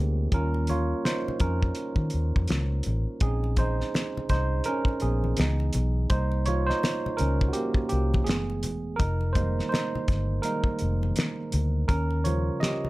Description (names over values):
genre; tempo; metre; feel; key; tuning
R&B, neo-soul; 83 BPM; 4/4; swing 59% on 16ths; unclear; A4 = 440 Hz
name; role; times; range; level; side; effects
tine electric piano; accompaniment; 0.0-12.9 s; Db3 to Eb5; -29 LUFS; right 2 dB; none
vintage muted fingered electric bass; bass; 0.0-12.5 s; Fb1 to Eb3; -26 LUFS; equal; none
cloth-damped thuddy drum kit; drums; 0.3-12.8 s; finger snaps, hi-hat, kick drum, snare drum; -27 LUFS; equal; none
congas; percussion; 0.3-12.9 s; none; -38 LUFS; left 4 dB; none
room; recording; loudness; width
light reverb; none; -24 LUFS; side -19 dB against mid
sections
0.0-12.9 A section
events
tine electric piano solo 0.0-12.9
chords
0.3 Eb9; 3.2 Bbm11; 5.4 Dbm7; 6.1 Cm7; 8.3 Gbm11; 9.0 Fm11; 11.9 Eb13